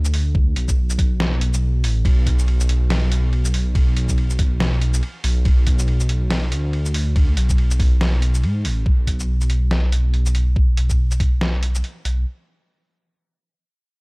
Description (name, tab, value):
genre	deep dubstep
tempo	141 BPM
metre	4/4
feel	swing 57% on 16ths, half-time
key	B dorian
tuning	A4 = 440 Hz
part	dark detuned saw bass	bass	0.0-12.3 s	A1 to G#2	-18 LUFS	equal	none
part	trip hop sampler-style drum kit	drums	0.0-12.1 s	hi-hat, ride cymbal, shaker, snare drum	-26 LUFS	equal	small room ambience
part	electronic kick drum	drums	0.3-11.3 s	none	-17 LUFS	equal	small room ambience
room	little or no reverb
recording	dry, gritty hardware recording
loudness	-16 LUFS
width	side -30 dB against mid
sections	0.0-8.9 A section; 8.9-12.3 B section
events	drop 0.0-8.9; filter sweep on detuned saw bass 8.9-12.3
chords	none